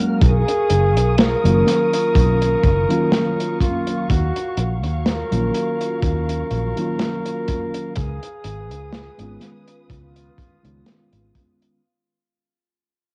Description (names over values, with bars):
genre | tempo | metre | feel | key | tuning
vaporwave | 62 BPM | 4/4 | swing 55% on 16ths | unclear | A4 = 440 Hz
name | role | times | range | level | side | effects
mellow FM electric piano | accompaniment | 0.0-11.8 s | D#3 to E#5 | -26 LUFS | equal | analog chorus, cassette tape
muted studio string section | sustained chords | 0.0-11.8 s | F#3 to E#6 | -33 LUFS | equal | cassette tape
mellow flugelhorn | melody | 0.2-11.3 s | E#4 to A#4 | -25 LUFS | equal | cassette tape, tape echo
fingered electric bass | bass | 0.2-11.3 s | F#1 to D#2 | -23 LUFS | equal | none
crunchy breakbeat drum kit | drums | 0.2-11.8 s | hi-hat, snare drum | -25 LUFS | equal | cassette tape
kick drum | drums | 0.2-11.6 s | none | -22 LUFS | equal | cassette tape
room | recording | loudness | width
moderate spring reverb, RT60 2.3 s | home recording on cassette | -19 LUFS | mono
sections
0.0-11.8 A section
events
fade-out 1.5-11.8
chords
0.2 Bmaj9#11; 4.1 D#m9; 8.0 C#9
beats
| 0.22 1.19 2.16 3.12 | 4.09 5.06 6.03 7.00 | 7.96 8.93 9.90 10.87